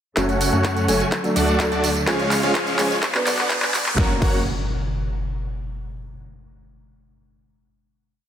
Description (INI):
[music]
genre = EDM, festival progressive house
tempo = 126 BPM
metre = 4/4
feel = straight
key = F# harmonic minor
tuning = A4 = 441 Hz
[part]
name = dark baby grand piano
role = accompaniment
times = 0.2-4.4 s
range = B2 to B4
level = -26 LUFS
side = right 1 dB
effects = sidechain pumping, dub echo
[part]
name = rich studio string section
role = sustained chords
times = 0.2-4.2 s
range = C#3 to B3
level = -28 LUFS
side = equal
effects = sidechain pumping, low-pass filter
[part]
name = big supersaw lead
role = riff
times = 0.2-4.4 s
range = G#3 to A5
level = -23 LUFS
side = equal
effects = sidechain pumping, low-pass filter, dub echo
[part]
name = wide detuned saw bass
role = bass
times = 0.2-4.4 s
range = F#1 to F#2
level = -27 LUFS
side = equal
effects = chorus, sidechain pumping
[part]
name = big-room dance drum kit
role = drums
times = 0.2-4.3 s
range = crash cymbal, handclaps, hi-hat, snare drum, tambourine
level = -25 LUFS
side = equal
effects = overdrive
[part]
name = electronic kick drum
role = drums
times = 0.2-4.3 s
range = none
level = -22 LUFS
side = equal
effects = overdrive, high-pass filter on kick
[part]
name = riser and impact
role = sound effects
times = 1.2-5.9 s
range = none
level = -29 LUFS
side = equal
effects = none
[sound]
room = moderate lush hall reverb, RT60 2.0 s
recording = dense, heavily limited modern master, high-pass filter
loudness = -18 LUFS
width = side -9 dB against mid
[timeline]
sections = 0.2-4.0 build; 4.0-5.9 final chord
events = build-up 0.2-4.0; drum fill 0.2-4.0; filter sweep on supersaw synth 0.2-4.0; filter sweep on string section 0.2-4.0; filter sweep 0.2-4.0; riser 1.2-4.0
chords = 0.2 F#m; 1.1 D; 2.1 C#; 3.0 Bm; 4.0 F#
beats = | 0.17 0.65 1.12 1.60 | 2.08 2.55 3.03 3.50 | 3.98 4.46 4.93 5.41